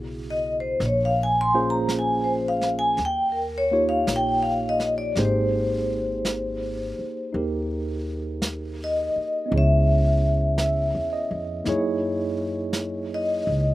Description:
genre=jazz ballad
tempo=55 BPM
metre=4/4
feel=swing 67% on 8ths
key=unclear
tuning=A4 = 439 Hz
part: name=tine electric piano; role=accompaniment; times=0.0-13.7 s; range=C#3 to E5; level=-27 LUFS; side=right 1 dB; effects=medium stereo tremolo, slapback echo
part: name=upright bass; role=bass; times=0.0-13.7 s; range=G#1 to F#2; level=-27 LUFS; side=equal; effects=none
part: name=vibraphone with medium hard mallets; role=melody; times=0.3-13.7 s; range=A#4 to B#5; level=-24 LUFS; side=left 1 dB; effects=none
part: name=vintage brush drum kit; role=drums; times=0.8-13.7 s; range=brushed snare drum, hi-hat, snare drum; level=-32 LUFS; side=right 1 dB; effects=none
room=little or no reverb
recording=recorded outdoors, with no room sound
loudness=-21 LUFS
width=side -16 dB against mid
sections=0.0-13.7 A section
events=vibraphone solo 0.0-13.7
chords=0.0 E69; 0.8 A#m7; 3.0 D#9; 5.2 G#maj9; 9.5 C#m7; 11.7 F#13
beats=| 0.81 1.89 2.98 4.08 | 5.17 6.25 7.34 8.42 | 9.50 10.58 11.66 12.73

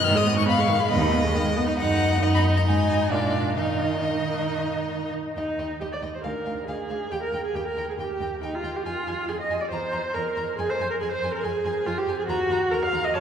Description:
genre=quick classical-period movement for string quartet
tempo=138 BPM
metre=4/4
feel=rubato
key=Eb minor, Eb major from 5.4 s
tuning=A4 = 440 Hz
part: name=warm violin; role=melody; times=0.0-13.2 s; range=Eb5 to F6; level=-31 LUFS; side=left 5 dB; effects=none
part: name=rich violin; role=second line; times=0.0-13.2 s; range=D5 to Bb5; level=-30 LUFS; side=left 2 dB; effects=none
part: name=rich viola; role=accompaniment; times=0.0-13.2 s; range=Eb3 to F5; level=-26 LUFS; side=right 1 dB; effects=none
part: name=rich cello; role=bass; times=0.1-13.2 s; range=D2 to Eb3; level=-28 LUFS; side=right 2 dB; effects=none
room=wet cathedral reverb, RT60 5.1 s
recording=recorded in a church or concert hall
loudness=-22 LUFS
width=side -8 dB against mid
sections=0.0-5.4 A section; 5.4-13.2 B section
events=none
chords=0.1 Abm; 1.8 Ebm/Gb; 2.7 Ab5; 3.1 Bb; 3.6 Ebsus2; 5.4 Eb; 6.2 Bb7/D; 7.1 Eb; 8.9 Fm; 9.7 C7/E; 10.6 Fm; 12.3 Cm7b5/Eb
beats=| 0.05 0.49 0.92 1.35 | 1.79 2.23 2.67 3.11 | 3.56 4.02 4.47 4.92 | 5.37 5.80 6.24 6.68 | 7.11 7.55 7.98 8.42 | 8.85 9.28 9.71 10.15 | 10.58 11.01 11.44 11.86 | 12.29 12.72 13.15

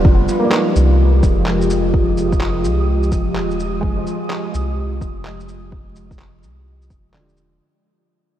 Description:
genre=future garage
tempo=127 BPM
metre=4/4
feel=swing 64% on 16ths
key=unclear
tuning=A4 = 441 Hz
part: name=felt-muted upright piano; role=accompaniment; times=0.0-7.6 s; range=D3 to D5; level=-24 LUFS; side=right 2 dB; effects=vintage 12-bit sampler grit, sidechain pumping, low-pass filter, tape echo
part: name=warbly tape-like pad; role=sustained chords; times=0.0-7.6 s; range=F3 to G4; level=-20 LUFS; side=equal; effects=chorus, built-in reverb, sidechain pumping
part: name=soft dub sub bass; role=bass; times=0.0-7.6 s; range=Eb1 to C2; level=-18 LUFS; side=equal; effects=sidechain pumping
part: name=electronic kick drum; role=drums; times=0.0-7.0 s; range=none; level=-16 LUFS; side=equal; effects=overdrive, vintage 12-bit sampler grit, small room ambience
part: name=wind-like tuned noise texture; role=texture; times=1.0-7.6 s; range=Eb5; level=-34 LUFS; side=right 4 dB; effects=built-in reverb, analog chorus
part: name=electronic shaker and handclaps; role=drums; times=0.3-7.5 s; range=none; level=-28 LUFS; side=equal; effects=overdrive, vintage 12-bit sampler grit, small room ambience
room=moderate huge ambient reverb, RT60 8.4 s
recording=dreamy mix soaked in reverb, vinyl crackle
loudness=-15 LUFS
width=side -12 dB against mid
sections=0.1-7.6 A section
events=fade-out 0.1-7.6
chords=0.1 Fm9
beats=| 0.05 0.52 0.99 1.47 | 1.94 2.41 2.88 3.36 | 3.83 4.30 4.77 5.25 | 5.72 6.19 6.66 7.14

